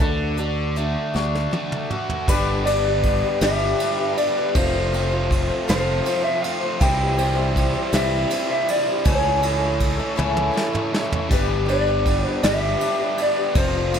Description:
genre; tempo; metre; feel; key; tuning
folk rock and heartland rock; 53 BPM (dotted quarters); 6/8; straight; G mixolydian; A4 = 445 Hz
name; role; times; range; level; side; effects
electric guitar through a small old amp; melody; 0.0-14.0 s; A4 to G5; -24 LUFS; equal; none
picked twelve-string acoustic guitar; accompaniment; 0.0-14.0 s; C3 to C5; -27 LUFS; left 5 dB; none
biting overdriven guitar; riff; 0.0-14.0 s; F2 to G4; -26 LUFS; right 1 dB; none
fingered electric bass; bass; 0.0-14.0 s; F1 to D2; -25 LUFS; equal; none
soft brush drum kit; drums; 0.0-14.0 s; crash cymbal, hi-hat, kick drum, ride cymbal, snare drum, toms; -25 LUFS; right 1 dB; none
mellow tonewheel organ; sustained chords; 2.3-14.0 s; D4 to C#5; -34 LUFS; right 1 dB; none
room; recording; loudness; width
light reverb; none; -18 LUFS; side -8 dB against mid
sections
0.0-2.3 A section; 2.3-14.0 B section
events
drum fill 1.2-2.3, 10.2-11.3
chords
0.0 D; 2.3 G; 4.6 F; 6.8 C; 9.1 A/C#; 11.3 G

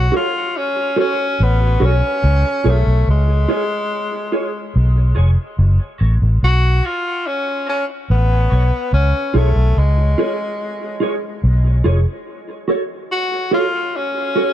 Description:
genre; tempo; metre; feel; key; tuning
dub reggae; 72 BPM; 4/4; straight; F# harmonic minor; A4 = 442 Hz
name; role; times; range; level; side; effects
clear tenor saxophone; melody; 0.0-14.5 s; G#3 to F#4; -21 LUFS; left 2 dB; dub echo
vintage muted fingered electric bass; bass; 0.0-12.0 s; E#1 to C#2; -13 LUFS; equal; none
mellow electric guitar; accompaniment; 0.1-14.5 s; E#4 to C#5; -22 LUFS; right 2 dB; ensemble chorus, high-pass filter, dub echo
room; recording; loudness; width
little or no reverb; dark, warm production, nothing above 10.6 kHz; -15 LUFS; side -12 dB against mid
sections
0.0-14.5 A section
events
filter sweep on clean electric guitar 2.2-8.9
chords
0.0 F#m; 2.2 C#; 5.6 F#m; 8.9 C#; 12.3 F#m

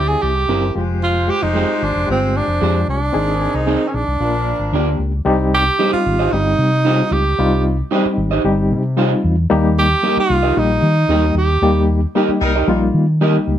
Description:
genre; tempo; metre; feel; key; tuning
soul; 113 BPM; 4/4; straight; C minor; A4 = 440 Hz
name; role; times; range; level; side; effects
breathy tenor saxophone; melody; 0.0-11.9 s; C4 to Ab4; -18 LUFS; right 2 dB; plate reverb
mellow horn section; second line; 0.0-5.0, 12.4-12.8 s; Eb3 to D5; -25 LUFS; left 2 dB; none
barky reed electric piano; accompaniment; 0.0-13.6 s; G3 to Bb4; -19 LUFS; left 2 dB; overdrive, fast tremolo
fingered electric bass; bass; 0.0-13.6 s; F1 to Eb3; -18 LUFS; equal; none
electric guitar through a small old amp; stabs; 0.5-13.4 s; Ab3 to Eb5; -20 LUFS; right 4 dB; none
room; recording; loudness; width
moderate studio reverb, RT60 0.6 s; dark, warm production; -14 LUFS; side -10 dB against mid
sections
0.0-5.3 A section; 5.3-13.6 B section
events
band accent 11.6-13.6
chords
0.0 C; 0.8 Fmadd9; 3.1 Ab; 4.2 Bb; 5.3 Cm; 9.5 Eb

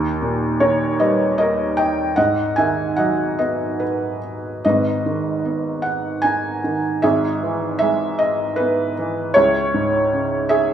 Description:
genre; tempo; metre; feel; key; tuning
classical, lyrical solo piano; 77 BPM; 3/4; rubato; G# minor; A4 = 440 Hz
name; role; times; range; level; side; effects
felt-muted upright piano; solo; 0.0-10.7 s; G#1 to G#5; -17 LUFS; right 1 dB; none
room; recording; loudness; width
moderate concert hall reverb, RT60 2.0 s; small room ambience; -17 LUFS; side -9 dB against mid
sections
0.0-4.6 A section; 4.6-10.7 B section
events
none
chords
0.0 D#; 2.2 G#m7; 4.6 G#m; 7.0 E/G#; 9.3 C#m

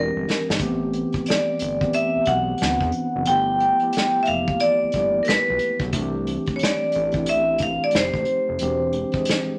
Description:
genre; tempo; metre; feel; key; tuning
R&B, neo-soul; 90 BPM; 4/4; swing 62% on 16ths; C major; A4 = 440 Hz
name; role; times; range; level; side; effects
vibraphone with hard mallets; melody; 0.0-9.6 s; Bb4 to G5; -23 LUFS; equal; none
mellow tine electric piano; accompaniment; 0.0-9.6 s; E3 to G#4; -29 LUFS; equal; none
fat analog bass; bass; 0.0-9.1 s; E1 to E2; -33 LUFS; equal; none
unplugged drum kit; drums; 0.3-9.5 s; hi-hat, kick drum, snare drum; -28 LUFS; equal; none
room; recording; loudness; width
moderate studio reverb, RT60 0.7 s; none; -22 LUFS; mono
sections
0.0-9.6 A section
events
drum fill 0.0-0.6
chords
0.0 E7alt; 0.6 Am9; 2.6 D13; 3.3 G13; 5.9 C69; 7.9 F9; 8.6 E7alt

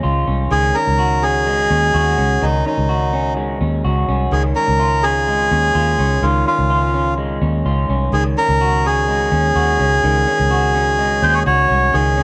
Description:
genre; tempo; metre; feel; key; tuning
jangly indie pop; 126 BPM; 4/4; straight; unclear; A4 = 436 Hz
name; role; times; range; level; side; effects
electric guitar through a small old amp; arpeggios; 0.0-12.2 s; Eb3 to Gb4; -24 LUFS; equal; subtle chorus, plate reverb, analog delay
vintage muted fingered electric bass; bass; 0.0-12.2 s; C2 to Eb2; -21 LUFS; equal; none
melodica; melody; 0.5-12.2 s; Eb4 to Db5; -19 LUFS; equal; none
room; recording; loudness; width
moderate studio ambience, RT60 0.5 s; none; -16 LUFS; mono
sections
0.0-11.9 A section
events
none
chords
0.0 Dbadd9; 0.5 Ab7sus4/Db; 4.3 Dbadd9; 8.1 Ab7sus4/Db

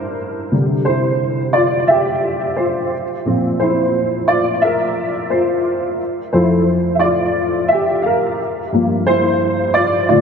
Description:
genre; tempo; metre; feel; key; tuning
pop; 88 BPM; 4/4; swing 56% on 16ths; C mixolydian; A4 = 440 Hz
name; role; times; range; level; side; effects
warm baby grand piano; solo; 0.0-10.2 s; F2 to F5; -14 LUFS; equal; ensemble chorus, tape echo
room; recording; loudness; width
wet cathedral reverb, RT60 4.5 s; dreamy mix soaked in reverb, nothing above 10.5 kHz; -14 LUFS; side -6 dB against mid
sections
0.0-10.2 A section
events
grand piano solo 0.0-10.2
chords
0.0 Gm7; 0.5 Cadd9; 2.9 Bbsus2; 6.0 Fmaj7; 8.4 Gm7

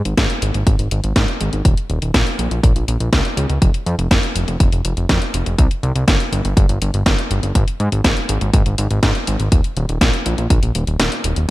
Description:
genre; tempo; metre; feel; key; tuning
italo disco; 122 BPM; 4/4; straight; unclear; A4 = 438 Hz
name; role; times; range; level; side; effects
fat analog bass; bass; 0.0-11.5 s; Eb1 to Ab2; -19 LUFS; equal; tube saturation
house drum kit; drums; 0.1-11.5 s; hi-hat, snare drum; -20 LUFS; equal; gated reverb
electronic kick drum; drums; 0.2-10.6 s; none; -15 LUFS; equal; none
room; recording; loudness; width
little or no reverb; none; -15 LUFS; side -17 dB against mid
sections
0.0-11.5 A section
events
kick drops out 11.0-11.5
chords
none

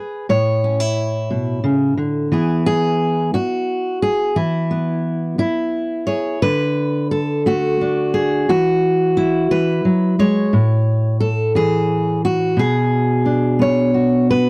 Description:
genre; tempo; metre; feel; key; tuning
folk, solo fingerstyle acoustic guitar; 59 BPM (dotted quarters); 6/8; straight; E mixolydian; A4 = 440 Hz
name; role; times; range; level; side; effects
fingerpicked steel-string acoustic guitar; solo; 0.0-14.5 s; A2 to C#5; -18 LUFS; equal; none
room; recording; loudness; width
light reverb; dry, close 1970s-style studio recording; -18 LUFS; mono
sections
0.0-6.4 A section; 6.4-14.5 B section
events
none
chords
0.3 A; 2.3 E; 6.4 D; 8.5 E; 10.5 A; 12.6 Bmadd9

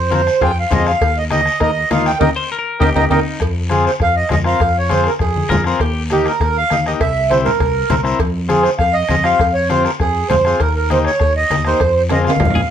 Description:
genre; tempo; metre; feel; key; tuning
latin, cumbia; 200 BPM; 4/4; straight; F minor; A4 = 441 Hz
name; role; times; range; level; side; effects
accordion; melody; 0.0-12.7 s; G4 to G5; -16 LUFS; right 3 dB; none
smooth gliding synth bass; bass; 0.0-12.6 s; C2 to F2; -20 LUFS; equal; none
combo organ; accompaniment; 0.1-12.3 s; Bb3 to Bb4; -20 LUFS; left 5 dB; none
bombo; percussion; 0.1-12.6 s; none; -22 LUFS; left 3 dB; none
congas; percussion; 0.1-12.6 s; none; -22 LUFS; left 3 dB; none
cowbell and timbales; percussion; 0.1-12.6 s; none; -25 LUFS; right 4 dB; none
guiro; percussion; 0.1-12.7 s; none; -33 LUFS; left 4 dB; none
semi-hollow electric guitar; second line; 2.4-3.4, 5.5-6.0, 12.6 s; Eb4 to C5; -22 LUFS; left 5 dB; none
room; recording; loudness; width
light reverb; none; -13 LUFS; side -9 dB against mid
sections
0.0-3.4 A section; 3.4-12.7 B section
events
band accent 2.2-3.4; drum fill 2.5-3.4, 12.1-12.7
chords
0.0 Fm; 1.0 Eb; 3.4 Fm; 5.8 Eb; 7.0 C7; 8.2 Fm; 10.6 Eb; 11.8 Fm

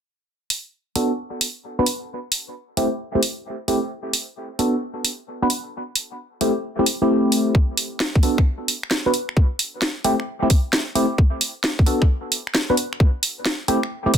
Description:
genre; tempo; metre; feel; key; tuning
UK garage, two-step garage; 132 BPM; 4/4; swing 67% on 16ths; B phrygian; A4 = 440 Hz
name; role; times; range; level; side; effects
garage drum kit; drums; 0.5-14.2 s; finger snaps, hi-hat, snare drum; -22 LUFS; right 1 dB; none
FM electric piano; stabs; 1.0-14.1 s; A3 to B4; -22 LUFS; equal; chorus, phaser, low-pass filter, dub echo
electronic kick drum; drums; 7.5-14.2 s; none; -16 LUFS; equal; none
room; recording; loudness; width
moderate studio reverb, RT60 0.5 s; dense, heavily limited modern master; -19 LUFS; side -8 dB against mid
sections
0.3-14.2 A section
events
none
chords
0.3 Bm7; 2.1 Am7; 3.9 Bm7; 5.7 Am7; 7.5 Bm7; 9.4 Am7; 11.2 Bm7; 13.0 Am7

